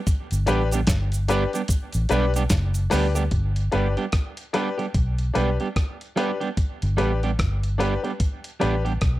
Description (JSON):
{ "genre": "roots reggae", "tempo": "74 BPM", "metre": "4/4", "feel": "swing 60% on 16ths", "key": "G major", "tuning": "A4 = 440 Hz", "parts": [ { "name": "dusty soul sampler-style drum kit", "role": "drums", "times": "0.1-9.2 s", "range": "hi-hat, kick drum, rim click, snare drum", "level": "-24 LUFS", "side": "equal", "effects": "none" }, { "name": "cabasa", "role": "percussion", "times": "0.1-3.3 s", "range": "none", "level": "-35 LUFS", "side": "right 4 dB", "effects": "none" }, { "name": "vintage muted fingered electric bass", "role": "bass", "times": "0.3-9.2 s", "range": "F#1 to D2", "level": "-23 LUFS", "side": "equal", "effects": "none" }, { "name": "electric guitar at the edge of break-up", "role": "accompaniment", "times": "0.5-8.9 s", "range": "G3 to G4", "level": "-28 LUFS", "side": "right 5 dB", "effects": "dub echo" }, { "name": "bright baby grand piano", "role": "stabs", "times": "0.5-8.8 s", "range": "D4 to B4", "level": "-26 LUFS", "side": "left 5 dB", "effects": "none" } ], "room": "light reverb", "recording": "none", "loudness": "-21 LUFS", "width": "side -16 dB against mid", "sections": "0.0-3.3 A section; 3.3-9.2 B section", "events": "none", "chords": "0.0 G" }